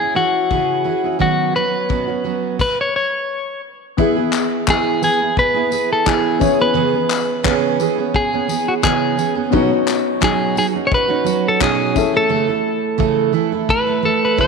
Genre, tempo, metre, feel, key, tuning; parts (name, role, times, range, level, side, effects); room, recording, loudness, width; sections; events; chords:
acoustic pop; 86 BPM; 4/4; swing 55% on 16ths; A4 = 440 Hz
clean electric guitar; melody; 0.0-14.5 s; F#4 to C#5; -18 LUFS; left 2 dB
picked steel-string acoustic guitar; accompaniment; 0.0-14.5 s; B2 to A4; -19 LUFS; right 10 dB
vintage brush drum kit; drums; 0.5-14.5 s; crash cymbal, handclaps, kick drum, tambourine; -22 LUFS; left 4 dB
dark upright piano; accompaniment; 4.0-14.5 s; B3 to C#5; -22 LUFS; left 13 dB
moderate plate reverb, RT60 2.3 s; 1960s-style stereo with parts hard left and right; -15 LUFS; side -4 dB against mid
0.0-4.0 A section; 4.0-14.5 B section
stop 2.6-4.0; drum fill 12.3-14.5
0.0 C#m; 1.2 Badd9; 4.0 E; 6.4 C#m7; 9.5 Badd9; 12.0 A/C#